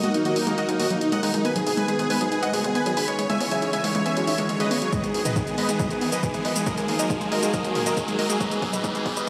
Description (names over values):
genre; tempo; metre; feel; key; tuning
uplifting trance; 138 BPM; 4/4; straight; G# minor; A4 = 441 Hz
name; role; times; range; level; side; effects
dense compressed supersaw; melody; 0.0-9.3 s; D#4 to B5; -28 LUFS; equal; sidechain pumping, delay
lush unison pad; sustained chords; 0.0-9.3 s; D#3 to C#4; -31 LUFS; equal; chorus, sidechain pumping
unison pluck; arpeggios; 0.0-9.3 s; F#3 to D#4; -31 LUFS; equal; sidechain pumping, delay
fat analog bass; bass; 0.0-9.2 s; D#1 to G#2; -37 LUFS; equal; none
punchy analog drum machine; drums; 0.0-9.3 s; hi-hat, shaker, toms; -33 LUFS; equal; none
riser; sound effects; 0.0-9.3 s; none; -36 LUFS; equal; none
electronic kick drum; drums; 4.9-9.1 s; none; -31 LUFS; equal; none
room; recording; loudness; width
wet concert hall reverb, RT60 2.0 s, digital ambience; played on a big sound system in a bare room, stone room reverb, high-pass filter; -24 LUFS; mono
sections
0.0-9.3 A section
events
build-up 0.0-9.3; riser 0.0-9.3; filter sweep on synth arpeggio sound 0.0-9.3; drum fill 4.9-9.3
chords
0.0 D#m; 1.4 G#m; 3.2 C#m; 4.9 G#m; 6.7 D#m; 8.4 G#m